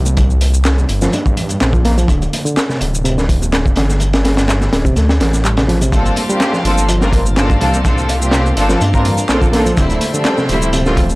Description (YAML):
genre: breakbeat, breaks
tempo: 125 BPM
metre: 4/4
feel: swing 53% on 16ths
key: G minor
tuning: A4 = 440 Hz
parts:
  - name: overdriven reed electric piano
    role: riff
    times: 0.0-10.9 s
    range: C3 to D4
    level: -20 LUFS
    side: equal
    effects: harmonic tremolo, analog delay
  - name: detuned saw bass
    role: bass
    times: 0.0-11.2 s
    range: D1 to G2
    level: -16 LUFS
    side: equal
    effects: none
  - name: garage drum kit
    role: drums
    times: 0.1-11.2 s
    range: handclaps, hi-hat, shaker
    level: -24 LUFS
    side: equal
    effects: none
  - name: congas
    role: percussion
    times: 0.1-11.2 s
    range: none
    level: -28 LUFS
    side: right 2 dB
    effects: none
  - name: crunchy breakbeat drum kit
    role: drums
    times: 0.2-11.1 s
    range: hi-hat, kick drum, snare drum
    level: -16 LUFS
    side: equal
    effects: none
  - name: bright tonewheel organ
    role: sustained chords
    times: 5.9-11.2 s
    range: F3 to A5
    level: -27 LUFS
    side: left 1 dB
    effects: overdrive, slow rotary speaker, sidechain pumping
  - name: warm symphonic string section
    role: stabs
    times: 5.9-10.9 s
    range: F3 to Bb4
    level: -17 LUFS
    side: equal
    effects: analog delay
room: little or no reverb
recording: dry, gritty hardware recording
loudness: -12 LUFS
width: side -22 dB against mid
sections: 0.0-11.2 A section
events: none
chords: 0.0 Gm7; 2.1 D7(no3); 5.9 Gm11; 9.8 Dm11